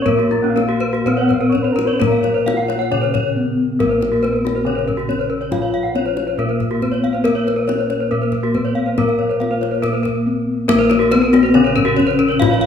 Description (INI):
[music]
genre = Balinese gamelan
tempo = 139 BPM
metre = 4/4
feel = straight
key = Bb pelog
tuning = A4 = 441 Hz
[part]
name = gamelan-type bronze metallophone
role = melody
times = 0.0-12.7 s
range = Bb3 to F4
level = -19 LUFS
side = left 3 dB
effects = none
[part]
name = soft struck synth lead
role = second line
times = 0.0-3.4 s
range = Bb4 to Gb5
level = -25 LUFS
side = right 1 dB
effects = chorus
[part]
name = gamelan-type bronze metallophone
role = accompaniment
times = 0.0-12.7 s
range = Db3 to Cb4+35c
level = -24 LUFS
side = right 2 dB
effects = none
[part]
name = gamelan-type bronze metallophone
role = arpeggios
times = 0.0-12.6 s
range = Db4 to Gb5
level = -25 LUFS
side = right 4 dB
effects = none
[part]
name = gamelan-type bossed gongs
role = bass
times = 0.0-12.7 s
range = Bb1 to Bb4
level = -21 LUFS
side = equal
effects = none
[part]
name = gamelan-type bronze metallophone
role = arpeggios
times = 0.1-12.7 s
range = F4 to F5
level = -22 LUFS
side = left 4 dB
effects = slapback echo
[part]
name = kendang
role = percussion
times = 0.1-12.6 s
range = none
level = -25 LUFS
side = left 5 dB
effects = none
[sound]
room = moderate scoring stage reverb, RT60 1.7 s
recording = small room ambience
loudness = -15 LUFS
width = side -8 dB against mid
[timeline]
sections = 0.0-3.8 A section; 3.8-12.7 B section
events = drum fill 3.2-3.8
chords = none